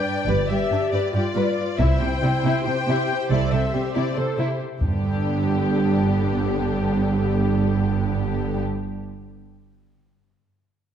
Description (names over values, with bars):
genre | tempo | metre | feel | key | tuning
cinematic, epic orchestral film score | 277 BPM (eighths) | 7/8 | straight | G major | A4 = 440 Hz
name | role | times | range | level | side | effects
rich studio violin section | melody | 0.0-8.6 s | G4 to G5 | -28 LUFS | left 5 dB | none
warm symphonic violin section | second line | 0.0-8.6 s | G3 to D5 | -28 LUFS | left 4 dB | none
warm symphonic viola section | accompaniment | 0.0-8.6 s | D3 to A4 | -29 LUFS | equal | none
dark studio double bass section | bass | 0.3-8.6 s | G1 to C2 | -24 LUFS | right 3 dB | none
rich symphonic cello section | bass | 0.3-8.6 s | G2 to C3 | -25 LUFS | right 2 dB | none
taiko ensemble | drums | 1.8-4.9 s | none | -27 LUFS | equal | none
room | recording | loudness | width
wet scoring stage reverb, RT60 1.7 s | dark, warm production | -20 LUFS | side -9 dB against mid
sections
0.0-4.8 A section; 4.8-7.9 B section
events
none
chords
0.0 G; 1.8 C; 4.8 G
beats
0.05 | 0.27 0.49 0.70 0.92 1.14 1.35 1.57 | 1.79 2.00 2.22 2.44 2.65 2.87 3.09 | 3.30 3.52 3.74 3.95 4.17 4.39 4.61 | 4.82 5.04 5.25 5.47 5.69 5.91 6.12 | 6.34 6.55 6.77 6.99 7.21 7.42 7.64